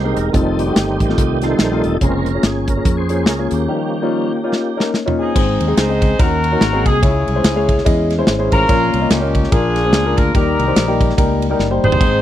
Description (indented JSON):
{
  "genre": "uptempo gospel",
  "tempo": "144 BPM",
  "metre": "4/4",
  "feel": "swing 59% on 8ths",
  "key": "unclear",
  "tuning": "A4 = 439 Hz",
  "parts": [
    { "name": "warm baby grand piano", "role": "accompaniment", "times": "0.0-12.2 s", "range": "Ab2 to Eb5", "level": "-18 LUFS", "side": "left 3 dB", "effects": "none" },
    { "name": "tonewheel organ", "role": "sustained chords", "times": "0.0-4.9, 12.0-12.2 s", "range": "C3 to C5", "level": "-21 LUFS", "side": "right 4 dB", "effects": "fast rotary speaker, overdrive, chorus vibrato" },
    { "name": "fingered electric bass", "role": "bass", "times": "0.0-12.2 s", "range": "Fb1 to F2", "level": "-20 LUFS", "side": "equal", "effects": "none" },
    { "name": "modern studio drum kit", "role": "drums", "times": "0.2-12.1 s", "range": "crash cymbal, hi-hat, kick drum, ride cymbal, snare drum, toms", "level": "-17 LUFS", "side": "equal", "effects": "none" },
    { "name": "warm horn section", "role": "melody", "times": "5.2-12.2 s", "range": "Bb3 to C5", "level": "-18 LUFS", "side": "equal", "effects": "none" }
  ],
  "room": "small room reverb",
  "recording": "dry, close 1970s-style studio recording",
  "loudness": "-13 LUFS",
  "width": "side -12 dB against mid",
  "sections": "0.0-5.4 A section; 5.4-12.2 B section",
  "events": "tonewheel organ solo 0.0-5.4; drum fill 4.5-5.4, 11.6-12.0",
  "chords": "0.3 F7; 2.0 Bbm7/F; 3.7 Eb7; 5.4 Ab; 6.2 Ebm7; 6.6 Ab9; 7.0 Dbm; 8.7 Bbm; 9.5 Bb7; 10.3 Eb"
}